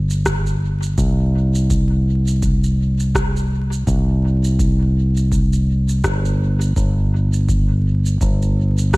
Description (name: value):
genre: ambient dub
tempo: 83 BPM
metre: 4/4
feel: swing 58% on 16ths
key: unclear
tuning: A4 = 440 Hz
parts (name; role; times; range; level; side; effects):
- fingered electric bass; bass; 0.0-9.0 s; G1 to C2; -16 LUFS; equal; tube saturation
- electronic shaker and rim click; drums; 0.1-9.0 s; none; -27 LUFS; equal; dub echo
- electronic kick drum; drums; 0.3-9.0 s; none; -22 LUFS; equal; none
room: little or no reverb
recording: vinyl crackle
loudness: -15 LUFS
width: side -24 dB against mid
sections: 0.0-9.0 A section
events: none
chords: none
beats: 0.26 | 0.98 1.70 2.43 3.15 | 3.87 4.59 5.32 6.04 | 6.76 7.49 8.21 8.93